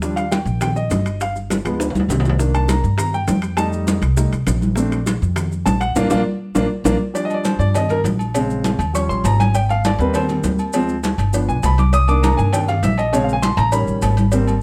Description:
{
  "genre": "Afro-Cuban jazz",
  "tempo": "201 BPM",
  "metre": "4/4",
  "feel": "straight",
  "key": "Bb major",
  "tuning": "A4 = 440 Hz",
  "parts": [
    { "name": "warm baby grand piano", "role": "accompaniment", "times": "0.0-14.5 s", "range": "Db3 to Eb6", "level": "-23 LUFS", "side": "equal", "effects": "none" },
    { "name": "upright bass", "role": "bass", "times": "0.0-14.6 s", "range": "G1 to G2", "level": "-22 LUFS", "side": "equal", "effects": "none" },
    { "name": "bongos and cowbell", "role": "percussion", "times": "0.0-14.5 s", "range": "none", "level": "-30 LUFS", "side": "equal", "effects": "none" },
    { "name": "congas", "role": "percussion", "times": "0.0-14.6 s", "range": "none", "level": "-26 LUFS", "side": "equal", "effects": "none" },
    { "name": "maracas", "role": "percussion", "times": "0.0-14.6 s", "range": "none", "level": "-37 LUFS", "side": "equal", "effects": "none" },
    { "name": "timbales and agogo bells", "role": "percussion", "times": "0.2-14.6 s", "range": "none", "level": "-30 LUFS", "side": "equal", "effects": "none" }
  ],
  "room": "moderate studio reverb, RT60 0.7 s",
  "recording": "none",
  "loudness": "-18 LUFS",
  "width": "mono",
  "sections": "0.0-7.2 A section; 7.2-14.6 A section",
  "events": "grand piano solo 0.0-14.6; drum fill 1.8-2.4, 6.0-7.2; band accent 6.0-7.2",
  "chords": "0.0 Ebmaj9; 1.2 G7b9; 2.4 Cm7; 3.6 F9; 4.8 Bbmaj7; 7.2 Bb69; 8.3 Bbm7; 8.9 Eb7; 9.5 Abmaj9; 10.7 Dm7b5; 11.3 G7; 11.9 Cm7; 13.1 Bbm7; 13.7 A7#11",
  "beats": "| 0.02 0.32 0.62 0.91 | 1.21 1.51 1.80 2.10 | 2.40 2.69 2.99 3.29 | 3.58 3.88 4.18 4.47 | 4.77 5.07 5.36 5.66 | 5.96 6.26 6.55 6.85 | 7.15 7.45 7.75 8.05 | 8.34 8.64 8.94 9.24 | 9.54 9.84 10.14 10.44 | 10.74 11.04 11.34 11.63 | 11.93 12.23 12.53 12.83 | 13.13 13.43 13.73 14.02 | 14.32 14.62"
}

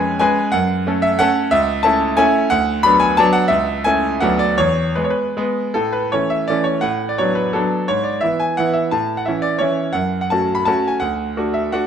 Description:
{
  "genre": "classical, romantic triple-time dance for piano with dotted rhythms",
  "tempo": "148-190 BPM",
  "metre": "3/4",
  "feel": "rubato",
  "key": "A major",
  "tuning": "A4 = 440 Hz",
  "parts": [
    { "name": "bright concert grand piano", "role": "solo", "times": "0.0-11.9 s", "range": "C#2 to B5", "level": "-15 LUFS", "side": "equal", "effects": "none" }
  ],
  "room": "wet stone room reverb, RT60 1.0 s",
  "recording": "none",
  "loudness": "-15 LUFS",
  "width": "side -8 dB against mid",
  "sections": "0.0-5.7 A section; 5.7-11.9 B section",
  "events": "none",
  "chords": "0.0 C#7/E#; 0.5 F#m; 1.5 A/C#; 2.5 Bm/D; 3.5 A/C#; 4.2 Bm/D; 4.6 E; 5.7 A; 6.8 Bm7/A; 7.9 E/G#; 8.9 A; 9.9 F#m; 11.0 D",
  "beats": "0.20 | 0.53 0.86 1.20 | 1.52 1.85 2.19 | 2.51 2.84 3.18 | 3.51 3.86 4.22 | 4.58 4.97 5.36 | 5.74 6.12 6.48 | 6.82 7.18 7.55 | 7.88 8.23 8.57 | 8.92 9.27 9.61 | 9.95 10.30 10.65 | 10.99 11.36 11.72"
}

